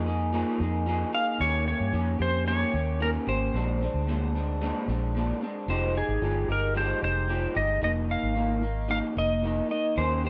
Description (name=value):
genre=indie pop, bedroom pop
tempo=112 BPM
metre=4/4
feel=straight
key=F minor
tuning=A4 = 440 Hz
part: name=clean lap steel guitar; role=melody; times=0.0-10.3 s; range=Ab4 to F5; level=-31 LUFS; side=equal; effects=analog chorus, slapback echo
part: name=electric guitar through a small old amp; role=accompaniment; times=0.0-10.3 s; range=F2 to Ab4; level=-32 LUFS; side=equal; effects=subtle chorus, vibrato effect
part: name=vintage muted fingered electric bass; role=bass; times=0.0-10.3 s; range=F1 to G2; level=-31 LUFS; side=equal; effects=none
room=digital ambience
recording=none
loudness=-27 LUFS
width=mono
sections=0.0-10.3 A section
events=none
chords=0.0 Bb7sus4/F; 1.4 Eb7; 3.5 Bb9; 5.7 Fm9; 7.8 F7sus4